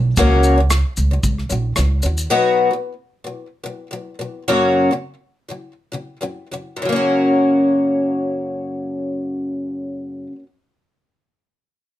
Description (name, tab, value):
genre	acoustic pop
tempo	96-113 BPM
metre	4/4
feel	swing 55% on 16ths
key	F# major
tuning	A4 = 440 Hz
part	picked twelve-string acoustic guitar	accompaniment	0.0-10.5 s	F#2 to F#4	-18 LUFS	left 1 dB	none
part	upright bass	bass	0.0-2.3 s	A#1 to D#2	-16 LUFS	right 1 dB	none
part	natural country drum kit	drums	0.2-2.3 s	kick drum, rim click, shaker	-21 LUFS	equal	none
room	light reverb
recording	none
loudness	-16 LUFS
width	side -13 dB against mid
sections	0.0-6.8 A section; 6.8-11.8 B section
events	slowing down 2.3-6.8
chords	0.2 F#/C#; 2.3 B; 4.5 F#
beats	| 0.17 0.70 1.24 1.77 | 2.30 2.83 3.37 3.91 | 4.46 5.03 5.61 6.21 | 6.82 7.45 8.07 8.70 | 9.32 9.95